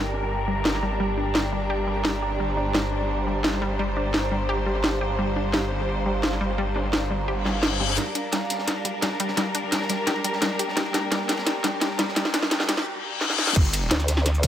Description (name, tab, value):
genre	dark technical drum and bass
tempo	172 BPM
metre	4/4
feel	straight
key	G minor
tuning	A4 = 441 Hz
part	muted studio string section	sustained chords	0.0-13.5 s	G3 to C5	-31 LUFS	left 1 dB	sidechain pumping, low-pass filter
part	wide unison pluck	arpeggios	0.0-12.7 s	G3 to G4	-31 LUFS	left 1 dB	sidechain pumping, digital delay
part	snarling distorted saw bass	bass	0.0-8.0, 13.6-13.9 s	G1	-28 LUFS	equal	distortion, overdrive
part	granular cloud pad	texture	0.0-14.5 s	G4 to Bb5	-31 LUFS	right 1 dB	built-in reverb, sidechain pumping
part	crunchy breakbeat drum kit	drums	0.1-14.5 s	ride cymbal, snare drum	-37 LUFS	equal	none
part	drum and bass drum kit	drums	0.7-14.5 s	cabasa, crash cymbal, hi-hat, snare drum	-25 LUFS	equal	none
part	reverse cymbal and riser	sound effects	7.4-13.6 s	none	-30 LUFS	left 5 dB	none
part	electronic kick drum	drums	13.6-14.5 s	none	-19 LUFS	equal	none
part	vowel-sweep wobble bass	bass	13.9-14.5 s	D2	-21 LUFS	equal	chorus
room	moderate lush hall reverb, RT60 1.8 s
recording	high-pass filter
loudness	-22 LUFS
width	side -10 dB against mid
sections	0.0-8.0 A section; 8.0-13.6 B section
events	reverse cymbal 7.4-8.0, 12.9-13.6; build-up 8.0-13.6; drum fill 8.0-12.9, 13.2-13.6; filter sweep on synth arpeggio sound 8.0-13.6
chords	0.0 Gm